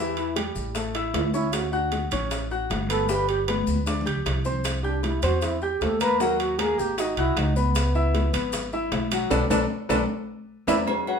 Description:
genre	Afro-Cuban jazz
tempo	154 BPM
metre	4/4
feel	straight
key	unclear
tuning	A4 = 440 Hz
part	breathy trombone	second line	0.0-10.8 s	B3 to B4	-27 LUFS	right 3 dB	none
part	warm baby grand piano	accompaniment	0.0-11.2 s	E3 to G6	-27 LUFS	left 2 dB	none
part	upright bass	bass	0.0-10.8 s	G1 to E2	-28 LUFS	equal	none
part	bongos and cowbell	percussion	0.2-11.1 s	none	-35 LUFS	left 4 dB	none
part	congas	percussion	0.2-11.2 s	none	-32 LUFS	left 2 dB	none
part	maracas	percussion	0.2-10.8 s	none	-40 LUFS	left 4 dB	none
part	timbales and agogo bells	percussion	0.2-11.2 s	none	-32 LUFS	right 5 dB	none
part	claves	percussion	4.7-11.1 s	none	-38 LUFS	right 4 dB	none
room	wet studio reverb, RT60 0.7 s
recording	band playing live in one room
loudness	-22 LUFS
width	side -6 dB against mid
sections	0.0-10.9 A section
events	trombone solo 0.0-10.9; drum fill 3.5-4.6, 9.7-10.9; band accent 9.3-10.9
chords	0.0 Em; 0.8 A; 1.5 Dmaj7; 3.1 G; 4.6 C; 6.2 D#m; 7.0 G#7; 7.8 C#m7; 9.3 Bm7; 10.1 E5

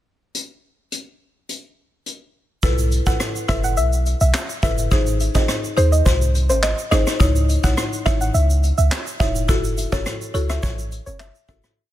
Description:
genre	dancehall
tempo	105 BPM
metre	4/4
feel	straight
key	unclear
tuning	A4 = 442 Hz
part	vintage brush drum kit	drums	0.3-11.8 s	handclaps, hi-hat, kick drum, rim click, shaker	-22 LUFS	equal	soft clipping on snare
part	buzzing marimba with medium mallets	accompaniment	2.6-11.7 s	D#4 to C#5	-26 LUFS	left 3 dB	sidechain pumping
part	clean 808-style bass	bass	2.6-11.6 s	E1 to D#2	-19 LUFS	equal	none
part	tube shaker and timbales	percussion	2.6-11.8 s	none	-33 LUFS	right 9 dB	none
part	soft round pluck	melody	3.1-11.6 s	B#4 to F#5	-25 LUFS	equal	chorus, ping-pong delay
room	studio ambience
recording	dense, heavily limited modern master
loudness	-17 LUFS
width	side -13 dB against mid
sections	0.3-2.6 pickup bar; 2.6-11.8 chorus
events	fade-out 9.5-11.8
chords	0.3 N.C.; 2.6 B7sus4; 4.9 G#; 7.2 C#madd9; 9.5 F#m7

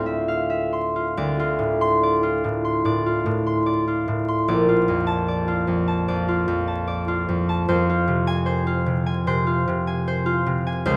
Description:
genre	classical, solo harp piece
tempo	74 BPM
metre	4/4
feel	uneven beats, rubato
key	D minor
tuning	A4 = 437 Hz
part	concert harp	solo	0.0-11.0 s	Bb1 to D6	-22 LUFS	equal	none
room	wet recital hall reverb, RT60 1.5 s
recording	vinyl crackle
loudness	-22 LUFS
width	mono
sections	0.0-1.2 A section; 1.2-11.0 B section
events	none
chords	0.0 Dm9; 1.2 Dm7; 4.5 Bbmaj7; 7.7 Fm

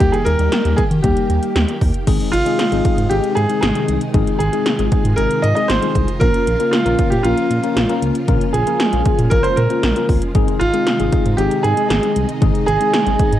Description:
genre	synth-pop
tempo	116 BPM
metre	4/4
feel	straight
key	Ab major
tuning	A4 = 440 Hz
part	clear grand piano	melody	0.0-13.4 s	F4 to Eb5	-19 LUFS	right 2 dB	tape echo
part	tine electric piano	accompaniment	0.0-13.3 s	G3 to C5	-21 LUFS	left 8 dB	cassette tape
part	string machine, violins	sustained chords	0.0-13.4 s	C3 to G4	-25 LUFS	right 1 dB	ensemble chorus, cassette tape
part	smooth synth bass	bass	0.0-13.4 s	Ab1 to Eb3	-19 LUFS	equal	none
part	80s electronic pad drums	drums	0.0-13.4 s	crash cymbal, hi-hat, kick drum, snare drum	-18 LUFS	equal	none
room	moderate small room reverb, RT60 0.5 s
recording	home recording on cassette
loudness	-14 LUFS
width	side -12 dB against mid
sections	0.0-2.1 A section; 2.1-13.4 B section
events	none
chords	0.0 Eb; 2.1 Ab; 6.2 Bbm; 10.3 Ab

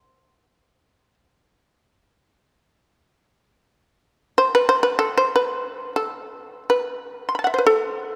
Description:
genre	japanese traditional, Japanese chamber music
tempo	free time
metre	none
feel	none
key	unclear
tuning	A4 = 439 Hz
part	shamisen	solo	0.0-8.2 s	A4 to C6	-21 LUFS	equal	none
room	wet church reverb, RT60 3.4 s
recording	none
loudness	-21 LUFS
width	mono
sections	0.0-8.2 A section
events	slowing down 1.3-8.2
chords	none

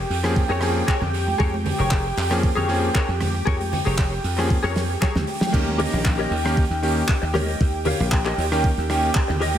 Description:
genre	nu-disco, nu disco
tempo	116 BPM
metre	4/4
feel	swing 53% on 16ths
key	unclear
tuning	A4 = 441 Hz
part	lush unison pad	sustained chords	0.0-9.6 s	G4 to G5	-27 LUFS	right 1 dB	chorus, sidechain pumping
part	dry thumbed slap bass	bass	0.0-9.6 s	F1 to F2	-25 LUFS	equal	sidechain pumping
part	damped 70s drum kit	drums	0.1-9.5 s	crash cymbal, handclaps, hi-hat, rim click, snare drum	-28 LUFS	right 2 dB	none
part	bright electric grand piano	accompaniment	0.2-9.1 s	Eb3 to Ab4	-26 LUFS	equal	ping-pong delay
part	direct-recorded clean electric guitar	riff	0.2-9.6 s	G4 to F5	-28 LUFS	left 4 dB	ensemble chorus, ping-pong delay
part	electronic kick drum	drums	0.4-9.3 s	none	-21 LUFS	equal	none
part	congas	percussion	1.0-9.6 s	none	-31 LUFS	right 3 dB	none
room	moderate plate reverb, RT60 1.5 s, studio reverb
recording	dreamy mix soaked in reverb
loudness	-19 LUFS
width	side -10 dB against mid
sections	0.0-5.5 A section; 5.5-9.6 B section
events	drum fill 4.8-5.5; band accent 5.4; drop 5.5-9.6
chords	0.0 Bbm7/F; 5.5 Eb7

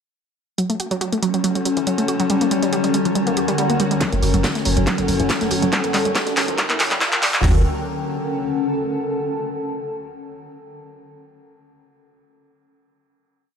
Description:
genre	driving peak-time techno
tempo	140 BPM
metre	4/4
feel	straight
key	F# minor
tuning	A4 = 441 Hz
part	analog pluck	riff	0.6-7.6 s	E3 to G4	-22 LUFS	right 2 dB	chorus, tube saturation, sidechain pumping, ping-pong delay
part	metallic inharmonic drone	drone	1.3-7.5 s	F#3 to C#4	-26 LUFS	left 4 dB	chorus, built-in reverb, sidechain pumping
part	punchy analog drum machine	drums	0.6-7.4 s	handclaps, hi-hat	-22 LUFS	equal	small room ambience
part	granular cloud pad	texture	1.3-9.1 s	D3 to Bb5	-24 LUFS	left 1 dB	built-in reverb, sidechain pumping
part	swell and riser	sound effects	3.3-7.4 s	none	-30 LUFS	right 2 dB	none
part	big rock drum kit	drums	4.0-7.3 s	hi-hat, ride cymbal, snare drum	-32 LUFS	right 1 dB	sidechain pumping on cymbals, high-pass filter on cymbals, small room ambience, sidechain pumping on hats, high-pass filter on hats, high-pass filter on snare, high-pass filter on room
part	techno drum kit	drums	4.0-7.5 s	hi-hat, kick drum, snare drum, toms	-23 LUFS	right 1 dB	high-pass filter on kick, small room ambience, high-pass filter on snare, high-pass filter on toms, high-pass filter on hats
part	saturated sub bass	bass	4.1-7.6 s	F#1 to G1	-21 LUFS	equal	sidechain pumping, low-pass filter
room	moderate stone room reverb, RT60 1.1 s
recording	dark, warm production, high-pass filter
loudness	-17 LUFS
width	side -7 dB against mid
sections	0.6-4.0 intro; 4.0-7.4 build; 7.4-9.2 final chord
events	filter sweep on synth arpeggio sound 0.6-4.0, 4.0-7.4; swell 3.3-4.0; build-up 4.0-7.4; drum fill 4.0-7.4; filter sweep 4.0-7.4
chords	0.6 F#m; 2.3 Gm; 4.0 F#m; 5.7 Gm; 7.4 F#m

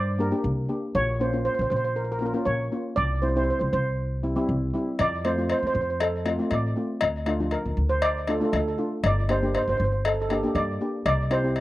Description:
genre	calypso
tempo	119 BPM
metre	4/4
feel	straight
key	F major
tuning	A4 = 440 Hz
part	steel pan	melody	0.0-11.6 s	A4 to D5	-27 LUFS	right 2 dB	slapback echo
part	upright bass	bass	0.0-11.6 s	G1 to G2	-27 LUFS	equal	none
part	steel pan	accompaniment	0.2-11.6 s	F3 to G4	-29 LUFS	left 1 dB	none
part	cowbell	percussion	5.0-11.6 s	none	-28 LUFS	left 4 dB	slapback echo
room	little or no reverb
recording	recorded outdoors, with no room sound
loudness	-23 LUFS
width	side -16 dB against mid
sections	0.0-11.6 A section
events	none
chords	0.0 Gm; 0.9 Bbm; 3.0 C; 5.0 F; 7.0 Dm; 9.0 Gm; 11.1 C

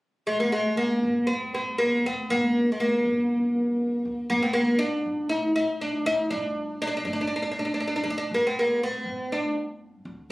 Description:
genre	arabic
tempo	120 BPM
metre	4/4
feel	straight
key	G maqam huzam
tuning	A4 = 438 Hz
part	oud	melody	0.3-9.5 s	Ab3+50c to E4-50c	-23 LUFS	equal	none
part	upright bass	bass	1.0-10.3 s	G1 to D2	-42 LUFS	equal	none
room	moderate studio reverb, RT60 0.6 s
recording	recorded on a phone in the room, studio reverb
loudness	-23 LUFS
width	side -20 dB against mid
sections	0.0-1.0 A section; 1.0-10.3 B section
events	none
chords	none

